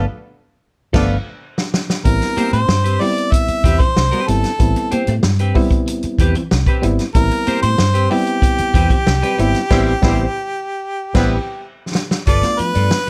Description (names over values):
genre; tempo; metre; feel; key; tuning
funk; 94 BPM; 4/4; straight; unclear; A4 = 439 Hz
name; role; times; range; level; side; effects
clean electric guitar; accompaniment; 0.0-13.1 s; C4 to F5; -27 LUFS; equal; lush chorus
barky reed electric piano; stabs; 0.0-13.0 s; F3 to F4; -23 LUFS; equal; overdrive
vintage muted fingered electric bass; bass; 0.0-12.9 s; G1 to A2; -20 LUFS; equal; none
clear horn section; second line; 0.9-1.1, 9.7-11.3 s; G3 to D5; -32 LUFS; equal; none
vintage drum kit; drums; 0.9-13.1 s; crash cymbal, hi-hat, kick drum, snare drum; -20 LUFS; equal; none
clear harmonica; melody; 2.0-13.1 s; G4 to E5; -22 LUFS; equal; none
clean electric guitar; riff; 2.2-13.1 s; E3 to Bb3; -29 LUFS; equal; ensemble chorus
room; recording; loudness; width
light reverb; dark, warm production; -16 LUFS; mono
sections
0.0-2.1 A section; 2.1-12.3 B section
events
band accent 0.0-2.1, 9.7-12.3; drum fill 0.8-2.1, 11.6-12.3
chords
0.0 G9; 2.1 Am9; 12.3 G9